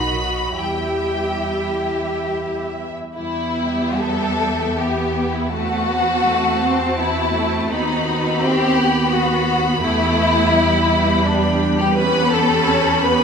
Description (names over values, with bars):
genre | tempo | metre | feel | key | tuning
classical, slow romantic movement for string orchestra | 66-86 BPM | 3/4 | rubato | E minor | A4 = 440 Hz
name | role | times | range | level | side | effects
rich studio violin section | melody | 0.0-13.2 s | E5 to B5 | -26 LUFS | left 2 dB | none
rich studio violin section | second line | 0.0-13.2 s | D4 to E5 | -20 LUFS | left 2 dB | none
warm studio viola section | accompaniment | 0.0-13.2 s | D#3 to G4 | -25 LUFS | right 1 dB | none
rich studio cello section | bass | 0.0-13.2 s | G3 to G4 | -23 LUFS | right 1 dB | none
rich studio double bass section | bass | 0.0-13.2 s | B1 to E2 | -25 LUFS | right 3 dB | none
room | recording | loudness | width
wet recital hall reverb, RT60 1.4 s | minimal, uncompressed stereo recording | -16 LUFS | side -6 dB against mid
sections
0.0-3.2 A section; 3.2-13.2 A section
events
none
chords
0.0 B; 0.6 Em; 5.5 F#m7b5/E; 7.7 B/D#; 9.8 Em; 12.0 C#m7b5/E